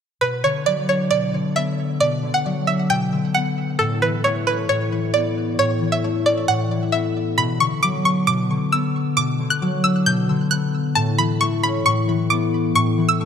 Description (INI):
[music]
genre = hip hop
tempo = 134 BPM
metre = 4/4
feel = half-time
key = B minor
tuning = A4 = 440 Hz
[part]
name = string-like resonator pluck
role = melody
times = 0.2-13.3 s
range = A4 to G6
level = -20 LUFS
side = right 1 dB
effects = chorus, phaser, ping-pong delay
[part]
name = concert harp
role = accompaniment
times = 0.2-13.3 s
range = A2 to D4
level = -20 LUFS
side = left 2 dB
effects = none
[sound]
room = moderate lush hall reverb, RT60 3.0 s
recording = dark, warm production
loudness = -18 LUFS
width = side -7 dB against mid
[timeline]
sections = 0.2-7.4 A section; 7.4-13.3 B section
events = none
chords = 0.2 Bm; 3.8 Aadd9; 7.4 Bm; 11.0 Aadd9